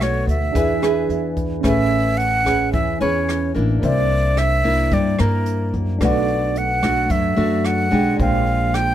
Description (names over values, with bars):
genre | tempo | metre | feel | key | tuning
bossa nova | 110 BPM | 4/4 | straight | unclear | A4 = 441 Hz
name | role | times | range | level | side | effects
breathy concert flute | melody | 0.0-8.9 s | Bb4 to G5 | -21 LUFS | right 1 dB | none
nylon-string guitar | accompaniment | 0.0-8.9 s | Bb2 to B4 | -22 LUFS | equal | none
tine electric piano | accompaniment | 0.0-8.9 s | C#4 to G#5 | -26 LUFS | right 2 dB | medium stereo tremolo
upright bass | bass | 0.0-8.9 s | A1 to G2 | -22 LUFS | equal | none
jazz brush drum kit | drums | 0.0-8.9 s | hi-hat, kick drum, rim click | -27 LUFS | equal | none
room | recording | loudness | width
little or no reverb | close, detailed microphones | -16 LUFS | side -11 dB against mid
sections
0.0-1.6 A section; 1.6-8.9 B section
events
none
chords
0.0 Bm7; 0.6 E7; 1.6 Amaj9; 3.8 C9; 6.0 Bm7; 8.2 Bb13